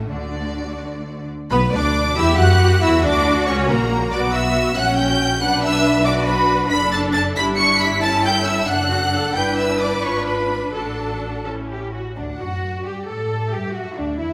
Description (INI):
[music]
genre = quick classical-period movement for string orchestra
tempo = 82-94 BPM (dotted quarters)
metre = 6/8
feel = rubato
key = B minor, D major from 6.7 s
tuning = A4 = 440 Hz
[part]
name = rich studio violin section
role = second line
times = 0.0-14.3 s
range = D4 to C#6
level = -26 LUFS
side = equal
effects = none
[part]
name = rich studio viola section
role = accompaniment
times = 0.0-14.2 s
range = A3 to B4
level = -26 LUFS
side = equal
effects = none
[part]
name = warm studio cello section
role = bass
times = 0.0-14.3 s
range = D3 to B4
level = -27 LUFS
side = equal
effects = none
[part]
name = warm studio double bass section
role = bass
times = 0.0-14.3 s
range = F#1 to A2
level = -25 LUFS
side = equal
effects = none
[part]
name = dark studio violin section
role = melody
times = 0.1-14.3 s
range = D5 to C#7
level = -25 LUFS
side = equal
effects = none
[sound]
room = wet scoring stage reverb, RT60 2.0 s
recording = none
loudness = -19 LUFS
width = mono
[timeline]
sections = 0.0-1.5 A section; 1.5-12.2 B section; 12.2-14.3 A section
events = none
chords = 0.1 D; 1.5 Bm; 2.2 Emadd9; 2.8 F#7; 4.1 B5; 4.8 F#/A#; 5.4 Bm; 6.7 D/F#; 7.4 G5; 8.0 A7/G; 8.7 D/F#; 9.4 Em7/G; 10.0 G#dim7; 10.7 D/A; 11.5 A; 12.2 D; 12.9 Gsus2; 13.5 Em9